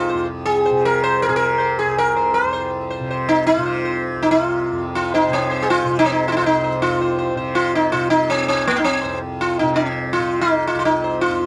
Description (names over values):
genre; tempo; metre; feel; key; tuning
indian classical, Hindustani; 162 BPM; 3/4; straight; C raga malkauns; A4 = 437 Hz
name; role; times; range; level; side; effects
sitar; melody; 0.0-11.5 s; Bb3 to C5; -19 LUFS; equal; none
tanpura; drone; 0.0-11.5 s; C2 to C3; -28 LUFS; equal; none
room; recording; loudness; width
little or no reverb; dry, close 1970s-style studio recording; -19 LUFS; mono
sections
0.0-6.8 A section; 6.8-11.5 B section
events
speeding up 0.0-11.5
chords
none